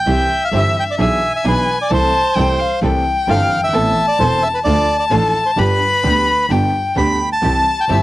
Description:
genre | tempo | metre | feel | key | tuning
tango | 130 BPM | 4/4 | rubato | C major | A4 = 440 Hz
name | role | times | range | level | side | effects
bandoneon | melody | 0.0-8.0 s | A4 to B5 | -18 LUFS | right 1 dB | none
warm violin | second line | 0.1-8.0 s | E5 to B5 | -18 LUFS | left 3 dB | none
warm concert grand piano | accompaniment | 0.1-8.0 s | E1 to A4 | -23 LUFS | equal | none
warm chamber string section | stabs | 0.1-8.0 s | A3 to A4 | -24 LUFS | right 4 dB | none
dark double bass | bass | 0.1-8.0 s | E1 to D2 | -19 LUFS | right 1 dB | none
room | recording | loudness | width
light reverb | dry, gritty hardware recording, cassette tape | -13 LUFS | side -16 dB against mid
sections
0.1-8.0 A section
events
none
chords
0.1 C; 1.0 E7/B; 1.9 Am/C; 2.8 C6; 3.7 Amadd9; 4.7 Dm; 5.6 G; 7.4 C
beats
| 0.06 0.53 0.99 1.45 | 1.91 2.37 2.82 3.28 | 3.74 4.20 4.66 5.12 | 5.58 6.04 6.50 6.96 | 7.43 7.89

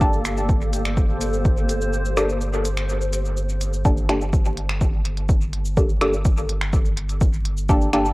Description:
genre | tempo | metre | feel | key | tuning
dub techno | 125 BPM | 4/4 | straight | G minor | A4 = 439 Hz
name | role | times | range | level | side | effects
granular cloud pad | sustained chords | 0.0-3.8 s | Bb3 to C5 | -28 LUFS | equal | built-in reverb, sidechain pumping, cassette tape
filtered dub chord stab | stabs | 0.0-8.1 s | Bb3 to A4 | -24 LUFS | equal | chorus, phaser, sidechain pumping, cassette tape, dub echo
soft dub sub bass | bass | 0.0-8.1 s | G1 | -25 LUFS | equal | sidechain pumping
deep house drum kit | drums | 0.0-8.1 s | cabasa, finger snaps, hi-hat | -31 LUFS | equal | cassette tape, dub echo
electronic kick drum | drums | 0.0-7.8 s | none | -19 LUFS | equal | cassette tape
room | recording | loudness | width
light reverb | home recording on cassette, vinyl crackle | -19 LUFS | side -21 dB against mid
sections
0.0-3.9 A section; 3.9-8.1 A section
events
break 1.9-3.9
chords
0.0 Gmadd9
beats
| 0.01 0.49 0.97 1.45 | 1.93 2.41 2.89 3.37 | 3.85 4.33 4.81 5.29 | 5.77 6.25 6.73 7.21 | 7.69

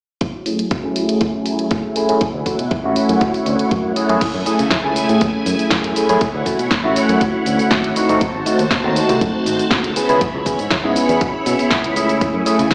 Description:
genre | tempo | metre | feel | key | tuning
filtered disco house | 120 BPM | 4/4 | straight | F# minor | A4 = 439 Hz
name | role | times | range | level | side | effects
phased string machine | sustained chords | 0.2-12.7 s | F#3 to B5 | -26 LUFS | equal | ensemble chorus, phaser, sidechain pumping, low-pass filter
electronic kick drum | drums | 0.2-12.7 s | none | -23 LUFS | equal | none
punchy analog drum machine | drums | 0.2-12.7 s | cabasa, crash cymbal, hi-hat, snare drum | -25 LUFS | equal | sidechain pumping on hats, sidechain pumping on cymbals, sidechain pumping on perc
bell-like tine electric piano | accompaniment | 0.5-12.6 s | A3 to G#4 | -20 LUFS | equal | phaser, sidechain pumping, low-pass filter
fingered electric bass | bass | 2.2-12.7 s | G#1 to C#3 | -25 LUFS | equal | sidechain pumping, low-pass filter
room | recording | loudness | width
moderate plate reverb, RT60 2.8 s | played on a big sound system in a bare room, large studio reverb, small speaker sound | -17 LUFS | mono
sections
0.2-4.2 A section; 4.2-12.7 B section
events
filter sweep 0.2-4.2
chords
0.2 F#m9; 2.2 Dmaj9 (rootless); 4.0 F#m9; 6.2 Dmaj9 (rootless); 8.0 G#7b9; 10.0 C#m7; 12.2 F#m9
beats
| 0.21 0.71 1.21 1.71 | 2.21 2.71 3.21 3.71 | 4.21 4.71 5.21 5.71 | 6.21 6.71 7.21 7.71 | 8.21 8.71 9.21 9.71 | 10.21 10.71 11.21 11.71 | 12.21 12.71

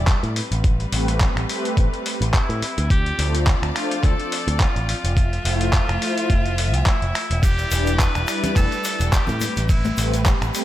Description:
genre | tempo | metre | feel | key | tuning
nu-disco, nu disco | 106 BPM | 4/4 | swing 55% on 16ths | A minor | A4 = 440 Hz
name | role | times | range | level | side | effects
rich studio string section | sustained chords | 0.0-10.6 s | F3 to E5 | -31 LUFS | left 1 dB | sidechain pumping
picked electric bass with an envelope filter | bass | 0.0-10.5 s | E1 to A2 | -22 LUFS | equal | sidechain pumping
dusty soul sampler-style drum kit | drums | 0.1-10.6 s | finger snaps, handclaps, hi-hat, ride cymbal | -26 LUFS | equal | overdrive
electronic kick drum | drums | 0.1-10.4 s | none | -19 LUFS | equal | overdrive
warm analog pad | accompaniment | 0.9-10.6 s | G3 to C5 | -28 LUFS | left 1 dB | chorus, sidechain pumping, ping-pong delay
bright tenor saxophone | melody | 2.3-10.2 s | E4 to B4 | -28 LUFS | equal | ping-pong delay
egg shaker and congas | percussion | 7.4-10.6 s | none | -30 LUFS | left 2 dB | none
room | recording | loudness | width
little or no reverb | none | -18 LUFS | side -13 dB against mid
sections
0.0-10.6 A section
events
none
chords
0.4 Am9; 2.9 Dm7; 5.2 Fmaj7; 7.4 Em7; 9.4 Am9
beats
0.07 | 0.64 1.20 1.77 2.34 | 2.90 3.47 4.03 4.60 | 5.17 5.73 6.30 6.87 | 7.43 8.00 8.56 9.13 | 9.70 10.26

